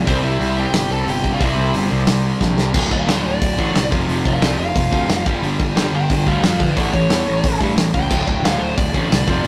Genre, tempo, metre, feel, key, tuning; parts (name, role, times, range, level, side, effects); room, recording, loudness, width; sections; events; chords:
punk rock; 179 BPM; 4/4; straight; D minor; A4 = 440 Hz
high-gain distorted guitar; riff; 0.0-9.5 s; D2 to C4; -29 LUFS; equal; distortion
overdriven electric guitar; riff; 0.0-9.5 s; D2 to C4; -25 LUFS; equal
biting lead guitar; melody; 0.1-9.4 s; C4 to A5; -26 LUFS; equal; overdrive
fuzz picked electric bass; bass; 0.1-9.5 s; D1 to G2; -23 LUFS; equal; overdrive
loose indie drum kit; drums; 0.1-9.5 s; crash cymbal, hi-hat, kick drum, snare drum; -23 LUFS; equal
moderate stone room reverb, RT60 1.5 s; rough rehearsal-room recording, tube saturation; -18 LUFS; mono
0.0-2.7 A section; 2.7-9.5 B section
half time 0.0-2.7; drum fill 2.4-2.7; lead electric guitar solo 2.7-9.5
0.1 C; 2.7 Dm; 3.9 F5; 5.3 G; 6.8 A; 8.1 D5